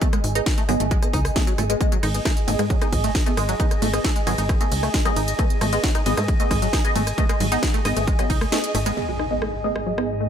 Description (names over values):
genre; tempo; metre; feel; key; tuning
driving peak-time techno; 134 BPM; 4/4; straight; G# phrygian; A4 = 440 Hz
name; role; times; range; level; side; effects
tight sequenced synth; riff; 0.0-10.3 s; F#3 to D#4; -28 LUFS; equal; chorus, phaser, tube saturation, cassette tape, sidechain pumping, tape echo
filtered dub chord stab; stabs; 0.0-10.1 s; B3 to D#5; -28 LUFS; equal; phaser, lush chorus, sidechain pumping, digital delay
electronic kick drum; drums; 0.0-8.4 s; none; -22 LUFS; equal; overdrive, small room ambience
techno drum kit; drums; 0.0-10.1 s; hi-hat, ride cymbal, rim click, snare drum; -28 LUFS; equal; overdrive, small room ambience
granular cloud pad; texture; 0.0-10.3 s; G#4 to G#5; -28 LUFS; right 1 dB; built-in reverb, sidechain pumping
tight sequencer bass; bass; 0.2-8.9 s; G#1 to G#2; -24 LUFS; equal; sidechain pumping
swarming drone; drone; 9.5-10.3 s; G#2; -32 LUFS; equal; built-in reverb, wide subtle chorus, sidechain pumping
impact; sound effects; 9.0-10.3 s; none; -32 LUFS; equal; none
room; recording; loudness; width
light reverb, digital ambience; none; -19 LUFS; side -9 dB against mid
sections
0.0-9.0 A section; 9.0-10.3 B section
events
drop 0.0-9.0; kick drops out 8.5-9.0; band accent 8.5; impact 9.0-10.3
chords
0.0 G#m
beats
| 0.02 0.46 0.91 1.36 | 1.81 2.25 2.70 3.15 | 3.60 4.04 4.49 4.94 | 5.39 5.84 6.28 6.73 | 7.18 7.63 8.07 8.52 | 8.97 9.42 9.87